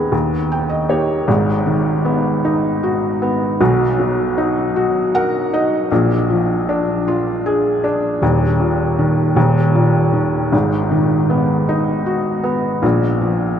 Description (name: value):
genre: folk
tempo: 52 BPM (dotted quarters)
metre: 6/8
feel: straight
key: G# minor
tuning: A4 = 439 Hz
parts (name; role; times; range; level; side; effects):
- felt-muted upright piano; solo; 0.0-13.6 s; D#1 to G5; -14 LUFS; equal; none
room: wet cathedral reverb, RT60 6.5 s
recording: in a vast, echoing space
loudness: -14 LUFS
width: side -8 dB against mid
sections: 0.0-1.3 A section; 1.3-13.6 B section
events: none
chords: 0.1 D#; 1.3 G#m7; 3.6 Bmaj7; 5.9 A#7; 8.2 D#5; 10.5 G#m7; 12.8 A#5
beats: 0.13 | 1.29 2.45 | 3.60 4.76 | 5.91 7.06 | 8.21 9.37 | 10.53 11.69 | 12.84